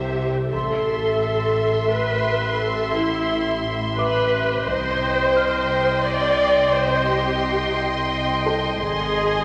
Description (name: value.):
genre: cinematic, suspense film score.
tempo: 87 BPM.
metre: 3/4.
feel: straight.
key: A minor.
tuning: A4 = 439 Hz.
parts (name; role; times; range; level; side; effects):
warm symphonic violin section; melody; 0.0-9.4 s; E5 to C6; -30 LUFS; equal; none.
warm symphonic violin section; second line; 0.0-9.4 s; C5 to G#5; -29 LUFS; equal; none.
warm symphonic viola section; accompaniment; 0.0-9.4 s; E4 to D5; -24 LUFS; equal; none.
clear symphonic double bass section; bass; 0.0-9.4 s; G#1 to C2; -34 LUFS; equal; none.
rich symphonic cello section; bass; 0.0-9.4 s; G#2 to C3; -32 LUFS; equal; none.
saturated sub bass; drone; 0.0-9.4 s; G#1 to C2; -34 LUFS; equal; none.
felt-muted upright piano; texture; 0.0-9.4 s; A4 to F6; -34 LUFS; equal; none.
room: wet scoring stage reverb, RT60 1.7 s.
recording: none.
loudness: -21 LUFS.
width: mono.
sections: 0.5-9.4 A section.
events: none.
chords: 0.0 C; 0.5 Am; 4.7 Cm; 8.8 G#.